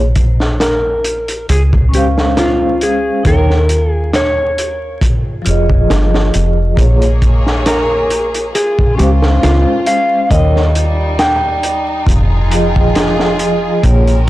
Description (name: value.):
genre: trip hop.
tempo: 68 BPM.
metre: 4/4.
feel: swing 54% on 16ths.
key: unclear.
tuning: A4 = 437 Hz.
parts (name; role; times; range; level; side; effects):
deep dub fingered electric bass; bass; 0.0-14.3 s; F1 to Eb2; -14 LUFS; equal; tube saturation.
crunchy breakbeat drum kit; drums; 0.2-14.3 s; hi-hat, kick drum, snare drum; -15 LUFS; equal; none.
clean lap steel guitar; melody; 0.6-12.0 s; F4 to G5; -17 LUFS; equal; tape echo.
vibraphone with soft mallets; accompaniment; 1.9-14.1 s; F3 to G5; -17 LUFS; equal; tremolo, low-pass filter, tape echo.
rich studio violin section; sustained chords; 6.8-14.3 s; G3 to Db5; -22 LUFS; equal; none.
room: light reverb, studio reverb.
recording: blown-out, overdriven recording, vinyl crackle, overdrive.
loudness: -10 LUFS.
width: side -16 dB against mid.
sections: 0.0-14.3 A section.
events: none.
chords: 0.0 N.C.; 1.5 Dbmaj7; 3.3 Eb7; 5.0 Fm7; 6.8 Bbm7; 8.5 Dbmaj7; 10.3 Eb7; 12.1 Fm7.